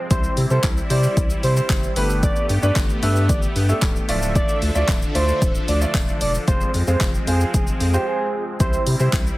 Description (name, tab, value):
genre	dance-pop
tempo	113 BPM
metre	4/4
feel	straight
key	C major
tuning	A4 = 438 Hz
part	filtered supersaw swell	sustained chords	0.0-9.4 s	D3 to E5	-28 LUFS	equal	sidechain pumping
part	expressive synth lead	melody	0.1-9.1 s	G4 to E5	-26 LUFS	right 1 dB	chorus, sidechain pumping, digital delay
part	clear concert grand piano	accompaniment	0.1-9.2 s	G3 to D5	-28 LUFS	right 2 dB	none
part	saturated sub bass	bass	0.1-9.3 s	Db1 to C3	-21 LUFS	equal	sidechain pumping
part	deep house drum kit	drums	0.1-9.4 s	handclaps, hi-hat, kick drum, shaker	-21 LUFS	equal	none
part	tambourine	percussion	0.6-9.3 s	none	-37 LUFS	left 6 dB	none
room	light reverb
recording	heavily compressed radio sound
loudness	-17 LUFS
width	side -18 dB against mid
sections	0.0-8.6 A section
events	drop 0.0-8.6; break 8.1-8.6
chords	0.1 C; 2.0 Gadd9; 4.1 Dmadd9; 6.5 Fm; 8.6 C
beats	| 0.11 0.64 1.17 1.70 | 2.23 2.76 3.29 3.82 | 4.35 4.88 5.42 5.95 | 6.48 7.01 7.54 8.07 | 8.60 9.13